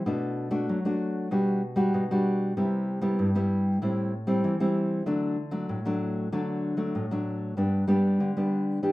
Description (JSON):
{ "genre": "samba", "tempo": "96 BPM", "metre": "4/4", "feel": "straight", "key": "G major", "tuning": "A4 = 441 Hz", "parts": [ { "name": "nylon-string guitar", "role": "solo", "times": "0.0-8.9 s", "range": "G2 to G4", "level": "-24 LUFS", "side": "equal", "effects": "none" } ], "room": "wet studio reverb, RT60 0.6 s", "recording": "rough home demo mix", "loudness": "-24 LUFS", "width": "side -18 dB against mid", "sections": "0.0-7.6 A section; 7.6-8.9 B section", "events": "none", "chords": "0.1 Bm7; 1.3 Gmaj7/B; 2.6 Cmaj7; 3.8 Am7; 5.1 D; 7.6 G" }